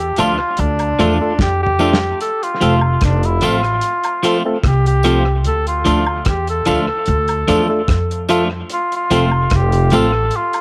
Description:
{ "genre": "roots reggae", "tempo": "74 BPM", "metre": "4/4", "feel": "straight", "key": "F major", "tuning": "A4 = 440 Hz", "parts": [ { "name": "dark cor anglais", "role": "melody", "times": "0.0-10.6 s", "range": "D4 to A4", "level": "-21 LUFS", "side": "equal", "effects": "cassette tape, dub echo" }, { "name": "upright bass", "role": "bass", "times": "0.0-10.3 s", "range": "F1 to F2", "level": "-20 LUFS", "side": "equal", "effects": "none" }, { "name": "clean electric guitar", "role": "accompaniment", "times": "0.2-10.2 s", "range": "F3 to F4", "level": "-22 LUFS", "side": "equal", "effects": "cassette tape, dub echo" }, { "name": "percussive organ stab", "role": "stabs", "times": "0.2-10.1 s", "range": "A3 to A4", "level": "-22 LUFS", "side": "equal", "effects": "chorus, cassette tape" }, { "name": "damped 70s drum kit", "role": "drums", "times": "0.2-10.6 s", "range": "hi-hat, kick drum, rim click, snare drum, toms", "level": "-23 LUFS", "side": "equal", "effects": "analog delay" }, { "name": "tambourine and woodblock", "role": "percussion", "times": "0.2-10.6 s", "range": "none", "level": "-31 LUFS", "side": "equal", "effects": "none" } ], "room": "light reverb", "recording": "home recording on cassette", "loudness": "-16 LUFS", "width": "mono", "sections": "0.0-10.6 A section", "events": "drum fill 1.4-2.2", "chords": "0.0 Dm; 2.2 F; 5.5 Dm; 8.7 F", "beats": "0.58 1.39 | 2.20 3.02 3.83 4.64 | 5.45 6.26 7.08 7.89 | 8.70 9.51 10.33" }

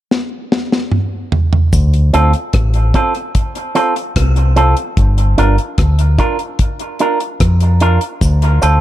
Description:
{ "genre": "dub reggae", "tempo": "74 BPM", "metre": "4/4", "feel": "straight", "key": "D minor", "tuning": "A4 = 440 Hz", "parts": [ { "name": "deep reggae drum kit", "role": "drums", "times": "0.1-8.8 s", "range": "hi-hat, kick drum, rim click, snare drum, toms", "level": "-16 LUFS", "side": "equal", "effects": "none" }, { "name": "deep dub fingered electric bass", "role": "bass", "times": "1.7-8.8 s", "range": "G1 to F2", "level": "-11 LUFS", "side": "equal", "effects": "none" }, { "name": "cabasa", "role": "percussion", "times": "1.7-1.9, 8.2-8.8 s", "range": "none", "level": "-30 LUFS", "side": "left 3 dB", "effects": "high-pass filter on perc" }, { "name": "electric guitar with an envelope filter", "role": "accompaniment", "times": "2.1-8.8 s", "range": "C4 to Bb4", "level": "-17 LUFS", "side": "right 2 dB", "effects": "high-pass filter, dub echo" } ], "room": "little or no reverb", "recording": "echo-heavy mix", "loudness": "-12 LUFS", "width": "side -14 dB against mid", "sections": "0.0-1.7 A section; 1.7-8.2 B section", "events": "drum fill 0.1-1.7; part muted 1.7-8.2; filter sweep 5.0-8.8", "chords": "0.0 N.C.; 1.7 Dm7; 5.0 Gm7; 8.2 Dm7", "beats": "0.11 0.92 | 1.73 2.54 3.35 4.16 | 4.97 5.78 6.59 7.40 | 8.21" }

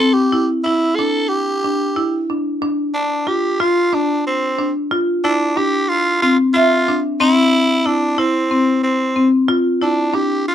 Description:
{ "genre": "progressive instrumental, progressive", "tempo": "183 BPM (eighths)", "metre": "7/8", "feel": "straight", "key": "D minor", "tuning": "A4 = 440 Hz", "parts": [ { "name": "growling tenor saxophone", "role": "melody", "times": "0.0-10.5 s", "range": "C4 to A4", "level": "-18 LUFS", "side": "right 2 dB", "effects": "none" }, { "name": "marimba with medium hard mallets", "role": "arpeggios", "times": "0.0-10.5 s", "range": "C4 to E5", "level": "-16 LUFS", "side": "left 1 dB", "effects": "none" } ], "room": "light reverb", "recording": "close, detailed microphones", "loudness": "-14 LUFS", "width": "side -10 dB against mid", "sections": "0.0-10.5 A section", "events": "none", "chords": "0.3 Em7; 2.6 Dm; 7.2 C; 9.5 Dmadd9", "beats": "0.00 | 0.32 0.65 0.98 1.31 1.63 1.96 2.29 | 2.62 2.94 3.27 3.60 3.93 4.25 4.58 | 4.91 5.24 5.56 5.89 6.22 6.54 6.87 | 7.20 7.53 7.85 8.18 8.51 8.84 9.16 | 9.49 9.82 10.14 10.47" }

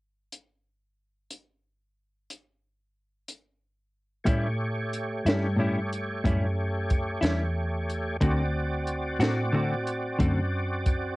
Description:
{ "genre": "slow blues", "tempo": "61 BPM (dotted quarters)", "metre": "12/8", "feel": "straight", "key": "A mixolydian", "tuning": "A4 = 444 Hz", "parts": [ { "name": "compact cocktail drum kit", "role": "drums", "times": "0.3-11.0 s", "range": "hi-hat, kick drum, snare drum", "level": "-28 LUFS", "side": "equal", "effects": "cassette tape" }, { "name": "overdriven tonewheel organ", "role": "sustained chords", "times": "4.2-11.2 s", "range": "A3 to D5", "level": "-32 LUFS", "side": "right 1 dB", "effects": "slow rotary speaker, chorus vibrato" }, { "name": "clean electric guitar", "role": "accompaniment", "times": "4.3-10.4 s", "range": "A2 to F#4", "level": "-26 LUFS", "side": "left 1 dB", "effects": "tremolo" }, { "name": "vintage muted fingered electric bass", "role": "bass", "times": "4.3-11.2 s", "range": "D2 to A2", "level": "-29 LUFS", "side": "equal", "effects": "none" } ], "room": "little or no reverb", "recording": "home recording on cassette", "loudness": "-25 LUFS", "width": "side -20 dB against mid", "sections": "0.3-4.3 A section; 4.3-11.2 B section", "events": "none", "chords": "0.3 N.C.; 4.3 A7; 8.2 D7", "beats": "| 0.30 1.29 2.28 3.27 | 4.26 5.25 6.24 7.23 | 8.22 9.21 10.19" }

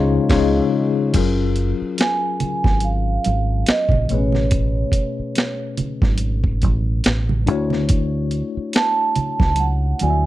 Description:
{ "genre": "R&B, neo-soul", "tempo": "71 BPM", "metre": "4/4", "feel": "swing 57% on 16ths", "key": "unclear", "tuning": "A4 = 440 Hz", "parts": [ { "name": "vibraphone with soft mallets", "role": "melody", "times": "0.0-10.3 s", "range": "C#5 to A5", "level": "-23 LUFS", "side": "right 4 dB", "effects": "none" }, { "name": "tine electric piano", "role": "accompaniment", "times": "0.0-10.3 s", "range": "B2 to E5", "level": "-22 LUFS", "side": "left 5 dB", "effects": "medium stereo tremolo" }, { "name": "deep dub fingered electric bass", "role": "bass", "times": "0.0-10.3 s", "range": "Gb1 to D2", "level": "-20 LUFS", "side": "right 1 dB", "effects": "none" }, { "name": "boom bap sampler-style drum kit", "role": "drums", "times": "0.3-10.2 s", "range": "crash cymbal, hi-hat, kick drum, snare drum", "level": "-19 LUFS", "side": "right 1 dB", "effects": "none" }, { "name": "congas", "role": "percussion", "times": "1.1-10.2 s", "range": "none", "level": "-27 LUFS", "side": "right 5 dB", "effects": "none" } ], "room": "little or no reverb", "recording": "dry, close 1970s-style studio recording", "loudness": "-17 LUFS", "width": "side -15 dB against mid", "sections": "0.0-1.1 A section; 1.1-10.3 B section", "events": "band accent 0.0-1.1", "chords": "0.0 Dbmaj9; 1.1 Gbmaj9; 4.1 Amaj9; 7.5 Dmaj9", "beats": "0.29 | 1.14 1.98 2.83 3.67 | 4.52 5.36 6.21 7.05 | 7.90 8.74 9.59" }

